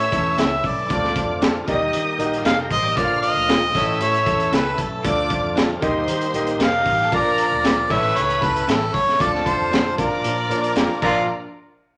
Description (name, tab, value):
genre	uptempo 1960s-style soul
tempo	116 BPM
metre	4/4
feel	straight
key	Bb major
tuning	A4 = 440 Hz
part	mellow harmonica	melody	0.0-11.3 s	F4 to F5	-23 LUFS	equal	none
part	rich studio violin section	second line	0.0-11.3 s	C4 to F6	-29 LUFS	equal	none
part	clear baby grand piano	accompaniment	0.0-11.3 s	Bb1 to F5	-28 LUFS	equal	none
part	tonewheel organ	sustained chords	0.0-11.3 s	D3 to G4	-33 LUFS	equal	overdrive, fast rotary speaker
part	vintage muted fingered electric bass	bass	0.0-11.3 s	F1 to Eb3	-34 LUFS	equal	none
part	crunchy breakbeat drum kit	drums	0.0-11.1 s	crash cymbal, hi-hat, kick drum, snare drum	-26 LUFS	equal	none
part	electric guitar through a small old amp	stabs	0.4-11.2 s	C#4 to Bb4	-33 LUFS	equal	none
room	moderate large studio reverb, RT60 0.8 s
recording	none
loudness	-20 LUFS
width	mono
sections	0.0-11.3 A section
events	none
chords	0.0 A; 0.9 Dm; 1.7 Eb; 3.0 Bb; 3.7 A; 5.0 Dm; 5.8 Eb; 7.1 Bb; 7.9 A; 9.2 Dm; 10.0 Bb; 11.3 N.C.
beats	0.38 | 0.90 1.42 1.93 2.45 | 2.97 3.49 4.01 4.53 | 5.05 5.57 6.08 6.61 | 7.12 7.64 8.16 8.68 | 9.20 9.72 10.24 10.77